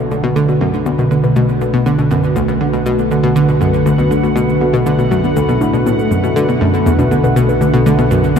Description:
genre	ambient, sequencer-driven space music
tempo	120 BPM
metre	4/4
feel	straight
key	B minor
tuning	A4 = 440 Hz
part	sweeping resonant pad	sustained chords	0.0-8.4 s	D3 to B4	-15 LUFS	right 1 dB	chorus
part	warbly dusty pluck	arpeggios	0.0-8.4 s	A3 to B4	-21 LUFS	left 4 dB	chorus, auto-pan, tape echo
part	fat analog bass	bass	0.0-8.4 s	B1	-28 LUFS	equal	none
part	bubbling stepped-filter texture	texture	0.0-8.4 s	F#5	-30 LUFS	right 4 dB	chorus, built-in reverb
part	analog pluck	riff	0.1-8.4 s	D2 to D3	-14 LUFS	equal	chorus, tape echo
part	shaker and congas	percussion	0.1-8.4 s	none	-34 LUFS	right 3 dB	tape echo
room	moderate huge ambient reverb, RT60 7.8 s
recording	dark, warm production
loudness	-11 LUFS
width	side -7 dB against mid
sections	0.0-8.4 A section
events	fade-in on analog synth bass 0.0-8.4; fade-in on synth texture 0.0-8.4; fade-in on drum 0.0-8.4; filter sweep on synth arpeggio sound 0.0-8.4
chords	0.0 Bm7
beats	| 0.36 0.86 1.36 1.86 | 2.37 2.87 3.37 3.87 | 4.37 4.87 5.37 5.87 | 6.37 6.87 7.37 7.87 | 8.37

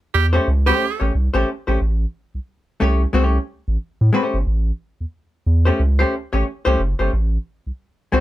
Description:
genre	funk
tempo	90 BPM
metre	4/4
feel	swing 60% on 16ths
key	A mixolydian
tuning	A4 = 440 Hz
part	breathy tenor saxophone	second line	0.1-1.1 s	G4	-20 LUFS	right 8 dB	none
part	round analog bass	bass	0.1-8.2 s	F#1 to A2	-17 LUFS	equal	none
part	hollow-body jazz guitar	accompaniment	0.3-8.2 s	A3 to C#5	-20 LUFS	left 2 dB	none
room	little or no reverb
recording	none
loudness	-17 LUFS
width	side -15 dB against mid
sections	0.0-8.2 A section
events	band accent 0.0-1.8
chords	0.0 A7#9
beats	0.47 1.14 | 1.80 2.47 3.14 3.80 | 4.47 5.13 5.80 6.47 | 7.13 7.80

